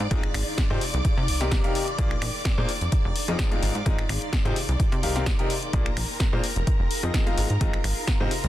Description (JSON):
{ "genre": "piano house", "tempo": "128 BPM", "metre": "4/4", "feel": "swing 54% on 16ths", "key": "unclear", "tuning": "A4 = 440 Hz", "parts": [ { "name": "string machine, violins", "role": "sustained chords", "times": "0.0-8.5 s", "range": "Bb4 to D6", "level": "-34 LUFS", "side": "equal", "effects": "ensemble chorus, sidechain pumping" }, { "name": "plucky analog bass", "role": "bass", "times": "0.0-8.5 s", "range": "F1 to C3", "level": "-27 LUFS", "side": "equal", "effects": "sidechain pumping" }, { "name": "punchy analog drum machine", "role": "drums", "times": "0.0-8.5 s", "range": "finger snaps, hi-hat, snare drum", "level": "-31 LUFS", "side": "left 2 dB", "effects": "none" }, { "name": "granular cloud pad", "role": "texture", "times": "0.0-8.5 s", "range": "Eb4 to C6", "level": "-36 LUFS", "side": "equal", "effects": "built-in reverb, sidechain pumping" }, { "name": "clear baby grand piano", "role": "riff", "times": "0.1-8.3 s", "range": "Ab2 to F5", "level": "-31 LUFS", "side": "left 2 dB", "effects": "sidechain pumping, tape echo" }, { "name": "electronic kick drum", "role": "drums", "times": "0.1-8.2 s", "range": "none", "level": "-25 LUFS", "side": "equal", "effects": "none" } ], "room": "little or no reverb", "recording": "dense, heavily limited modern master", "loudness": "-22 LUFS", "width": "side -14 dB against mid", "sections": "0.0-8.5 A section", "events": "none", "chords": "0.0 Ab6; 0.8 Cm7; 2.0 Bb7; 2.7 Fm7; 3.6 Ab6; 4.6 Cm7; 5.7 Bb7; 6.4 Fm7; 7.4 Ab6", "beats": "| 0.11 0.58 1.05 1.52 | 1.99 2.45 2.92 3.39 | 3.86 4.33 4.80 5.27 | 5.74 6.20 6.67 7.14 | 7.61 8.08" }